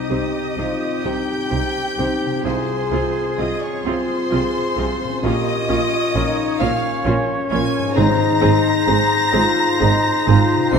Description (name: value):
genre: cinematic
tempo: 43 BPM (dotted quarters)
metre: 6/8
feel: rubato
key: Ab major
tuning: A4 = 439 Hz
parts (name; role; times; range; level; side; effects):
- clear studio violin section; melody; 0.0-10.8 s; C6 to C7; -26 LUFS; left 3 dB; none
- clear oboe; second line; 0.0-10.8 s; G4 to Db5; -28 LUFS; right 2 dB; none
- mellow clarinet; second line; 0.0-10.8 s; Eb4 to F4; -30 LUFS; left 2 dB; none
- mellow hollow silver concert flute; second line; 0.0-10.8 s; C5 to C6; -27 LUFS; left 2 dB; none
- rich studio violin section; second line; 0.0-10.8 s; C5 to C6; -28 LUFS; left 1 dB; none
- felt-muted upright piano; accompaniment; 0.0-10.8 s; C2 to C5; -26 LUFS; right 1 dB; none
- warm French horn section; sustained chords; 0.0-10.8 s; Db4 to Ab4; -24 LUFS; left 4 dB; none
- concert harp; arpeggios; 0.0-10.8 s; Ab2 to G5; -29 LUFS; left 6 dB; none
- rich studio viola section; accompaniment; 0.1-10.8 s; C4 to Ab4; -27 LUFS; right 2 dB; none
- rich studio cello section; bass; 0.1-10.8 s; Ab2 to C3; -25 LUFS; right 4 dB; none
- rich studio double bass section; bass; 0.1-10.8 s; Ab1 to C2; -24 LUFS; right 5 dB; none
- timpani; percussion; 8.0-9.3 s; Ab2; -24 LUFS; equal; none
room: wet scoring stage reverb, RT60 1.7 s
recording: none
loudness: -16 LUFS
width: side -6 dB against mid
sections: 0.0-10.8 A section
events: none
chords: 0.0 Cm; 2.4 Fmadd9/C; 5.2 Bbm; 8.0 Ab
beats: 1.04 | 2.44 3.84 | 5.23 6.59 | 7.96 9.33 | 10.73